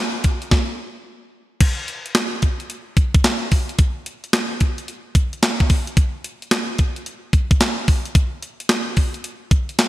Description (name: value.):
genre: R&B.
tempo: 110 BPM.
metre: 4/4.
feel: swing 65% on 16ths.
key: none.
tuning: none.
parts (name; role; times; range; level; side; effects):
clean 12-bit digital drum machine; drums; 0.2-9.9 s; crash cymbal, handclaps, hi-hat, kick drum, snare drum; -17 LUFS; equal; gated reverb.
room: light reverb.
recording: bright 1980s-style digital production.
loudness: -17 LUFS.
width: side -16 dB against mid.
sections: 0.0-1.6 A section; 1.6-9.9 B section.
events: stop 0.5-1.6.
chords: none.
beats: 0.51 1.06 | 1.60 2.15 2.70 3.24 | 3.79 4.33 4.88 5.42 | 5.97 6.51 7.06 7.61 | 8.15 8.70 9.24 9.79.